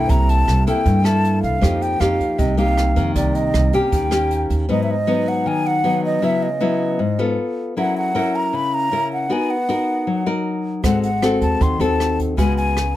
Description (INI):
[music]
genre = bossa nova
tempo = 156 BPM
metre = 4/4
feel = straight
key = C minor, G# minor from 4.7 s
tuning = A4 = 440 Hz
[part]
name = breathy mellow silver concert flute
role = melody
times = 0.0-13.0 s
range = D5 to B#5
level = -22 LUFS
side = equal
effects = none
[part]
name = nylon-string guitar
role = accompaniment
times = 0.0-13.0 s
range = G2 to A#4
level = -20 LUFS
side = left 2 dB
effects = none
[part]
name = upright bass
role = bass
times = 0.0-4.7, 10.8-12.9 s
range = G#1 to G2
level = -20 LUFS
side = right 1 dB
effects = none
[part]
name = jazz brush drum kit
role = drums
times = 0.1-4.6, 10.8-12.9 s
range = hi-hat, kick drum, rim click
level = -24 LUFS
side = right 1 dB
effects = none
[sound]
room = light reverb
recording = close, detailed microphones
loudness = -16 LUFS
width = side -14 dB against mid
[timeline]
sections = 0.0-4.7 A section; 4.7-13.0 B section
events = none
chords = 0.1 C6; 1.6 F9sus4; 3.2 Cm7; 3.9 Eb7; 4.7 G#m7; 6.2 C#m11; 7.4 F; 7.8 F#7; 9.3 Bmaj7; 10.8 G#7b9; 12.4 C#7sus4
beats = | 0.09 0.47 0.86 1.24 | 1.62 2.01 2.39 2.77 | 3.16 3.54 3.92 4.31 | 4.69 5.08 5.46 5.84 | 6.23 6.61 7.00 7.38 | 7.76 8.15 8.53 8.91 | 9.30 9.68 10.07 10.45 | 10.84 11.22 11.61 11.99 | 12.38 12.76